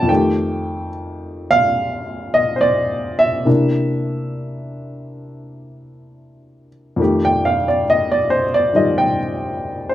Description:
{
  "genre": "solo jazz",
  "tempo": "70 BPM",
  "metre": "4/4",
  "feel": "swing 68% on 8ths, rubato",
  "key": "unclear",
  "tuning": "A4 = 440 Hz",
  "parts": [
    { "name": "warm baby grand piano", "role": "solo", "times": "0.0-9.9 s", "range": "F2 to Bb5", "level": "-16 LUFS", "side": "equal", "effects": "none" }
  ],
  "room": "moderate studio reverb, RT60 0.8 s",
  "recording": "dark, warm production",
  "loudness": "-15 LUFS",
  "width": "side -13 dB against mid",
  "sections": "0.0-7.0 A section; 7.0-9.9 B section",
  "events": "grand piano solo 7.0-9.9",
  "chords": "0.1 F9; 3.5 C9; 7.0 F9"
}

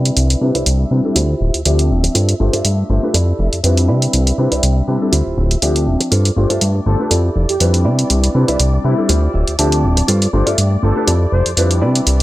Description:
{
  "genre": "filtered disco house",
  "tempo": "121 BPM",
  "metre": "4/4",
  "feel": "swing 55% on 16ths",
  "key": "unclear",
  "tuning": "A4 = 440 Hz",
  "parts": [
    { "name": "warm concert grand piano", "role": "accompaniment", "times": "0.0-12.2 s", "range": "F3 to E5", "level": "-19 LUFS", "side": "left 1 dB", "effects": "phaser, low-pass filter" },
    { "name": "clear studio violin section", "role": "sustained chords", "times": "0.0-12.2 s", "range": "D5 to E5", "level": "-31 LUFS", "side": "left 1 dB", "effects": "vintage 12-bit sampler grit, low-pass filter" },
    { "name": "clean electric guitar", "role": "riff", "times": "0.0-12.2 s", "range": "E4 to A5", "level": "-23 LUFS", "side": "right 2 dB", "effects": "low-pass filter" },
    { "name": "fat analog bass", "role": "bass", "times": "0.0-12.2 s", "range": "D1 to C3", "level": "-14 LUFS", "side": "equal", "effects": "tube saturation, low-pass filter" },
    { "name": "electronic hi-hat", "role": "drums", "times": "0.1-12.2 s", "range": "none", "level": "-18 LUFS", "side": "right 1 dB", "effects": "studio reverb" },
    { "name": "analog synth brass", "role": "melody", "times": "6.9-11.5 s", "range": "E4 to C5", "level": "-24 LUFS", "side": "left 1 dB", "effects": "chorus, low-pass filter" }
  ],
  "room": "digital ambience",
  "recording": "dry, gritty hardware recording",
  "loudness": "-13 LUFS",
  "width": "side -16 dB against mid",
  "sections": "0.0-12.2 A section",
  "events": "filter sweep 0.0-12.2; clean electric guitar fill 9.1-10.1",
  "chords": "0.0 Cmaj9; 1.2 Dm11; 2.1 G9sus4; 3.1 Fmaj13; 3.9 Cmaj9; 5.1 Dm11; 6.1 G9sus4; 7.1 Fmaj13; 7.9 Cmaj9; 9.1 Dm11; 10.1 G9sus4; 11.1 Fmaj13"
}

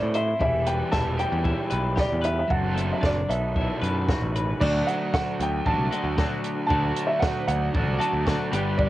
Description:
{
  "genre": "indie rock",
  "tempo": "114 BPM",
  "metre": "4/4",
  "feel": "straight",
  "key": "unclear",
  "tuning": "A4 = 440 Hz",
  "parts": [
    { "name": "dark upright piano", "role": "melody", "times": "0.0-8.9 s", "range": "D5 to A5", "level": "-27 LUFS", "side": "right 1 dB", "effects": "cassette tape, tape echo" },
    { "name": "raw garage guitar", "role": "riff", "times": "0.0-8.9 s", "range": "E2 to A4", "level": "-30 LUFS", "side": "right 4 dB", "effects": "overdrive, lush chorus, cassette tape, tape echo" },
    { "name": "twelve-string electric guitar", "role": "riff", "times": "0.0-8.9 s", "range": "A2 to C5", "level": "-30 LUFS", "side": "left 4 dB", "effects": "cassette tape" },
    { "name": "modern bright picked electric bass", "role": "bass", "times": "0.0-8.9 s", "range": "E1 to A2", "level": "-27 LUFS", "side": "equal", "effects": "none" },
    { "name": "compact cocktail drum kit", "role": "drums", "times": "0.1-8.9 s", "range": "crash cymbal, hi-hat, kick drum, snare drum", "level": "-28 LUFS", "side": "equal", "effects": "cassette tape" }
  ],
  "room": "light reverb",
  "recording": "home recording on cassette",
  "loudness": "-22 LUFS",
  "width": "side -15 dB against mid",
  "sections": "0.0-4.6 A section; 4.6-8.9 B section",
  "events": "none",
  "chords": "0.4 Em; 2.5 D7/F#; 3.3 B7sus4; 4.6 D"
}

